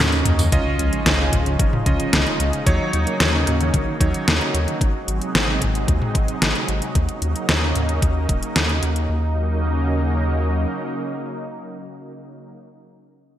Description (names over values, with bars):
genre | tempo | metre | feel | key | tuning
synthwave | 112 BPM | 4/4 | straight | Eb dorian | A4 = 440 Hz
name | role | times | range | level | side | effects
analog string pad | sustained chords | 0.0-12.6 s | C3 to Eb4 | -26 LUFS | right 1 dB | ensemble chorus, sidechain pumping
mellow electric guitar | riff | 0.0-4.7 s | Db3 to Eb4 | -30 LUFS | right 2 dB | none
clear electric grand piano | stabs | 0.0-4.8 s | Gb3 to Eb5 | -26 LUFS | right 2 dB | digital delay
round analog bass | bass | 0.0-10.7 s | Eb1 to Eb2 | -22 LUFS | equal | none
pop drum kit | drums | 0.1-9.1 s | hi-hat, snare drum, tambourine, toms | -21 LUFS | equal | overdrive, gated reverb
electronic kick drum | drums | 0.5-8.4 s | none | -21 LUFS | equal | overdrive
sub drop | sound effects | 0.5-2.7 s | none | -30 LUFS | equal | none
room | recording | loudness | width
moderate lush hall reverb, RT60 1.8 s | bright 1980s-style digital production | -18 LUFS | side -11 dB against mid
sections
0.5-9.1 A section; 9.1-13.4 B section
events
drum fill 0.0-0.5; impact 0.5-2.7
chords
0.0 Ebm7; 0.5 Dbadd9; 2.7 Ebm7; 4.8 Ab7; 7.0 Ebm7